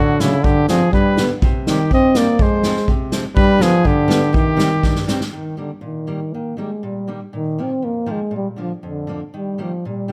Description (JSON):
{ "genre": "alpine folk, alpine dance band", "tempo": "121 BPM", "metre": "2/4", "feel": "straight", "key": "C minor, Eb major from 5.3 s", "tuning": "A4 = 441 Hz", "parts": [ { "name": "mellow euphonium", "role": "melody", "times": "0.0-10.1 s", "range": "Db3 to C4", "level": "-20 LUFS", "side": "equal", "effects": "none" }, { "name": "clear trumpet", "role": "second line", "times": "0.0-5.1 s", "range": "E4 to Eb5", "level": "-26 LUFS", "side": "equal", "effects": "none" }, { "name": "fingerpicked steel-string acoustic guitar", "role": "accompaniment", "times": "0.0-10.1 s", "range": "F2 to C4", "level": "-27 LUFS", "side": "equal", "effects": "none" }, { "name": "unplugged drum kit", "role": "drums", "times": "0.2-5.3 s", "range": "hi-hat, kick drum, snare drum", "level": "-21 LUFS", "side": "equal", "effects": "none" } ], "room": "light reverb", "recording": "none", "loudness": "-18 LUFS", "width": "mono", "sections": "0.0-5.3 A section; 5.3-10.1 B section", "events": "drum fill 4.8-5.3", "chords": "0.4 Gsus4; 0.9 G; 1.4 Cm; 2.4 Fm; 3.4 G; 4.3 Cm; 5.3 Eb; 7.3 Bbsus4; 8.3 Bb; 9.3 Eb", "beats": "| 0.44 0.93 | 1.42 1.91 | 2.40 2.88 | 3.37 3.85 | 4.34 4.84 | 5.34 5.84 | 6.34 6.83 | 7.33 7.83 | 8.33 8.84 | 9.34 9.85" }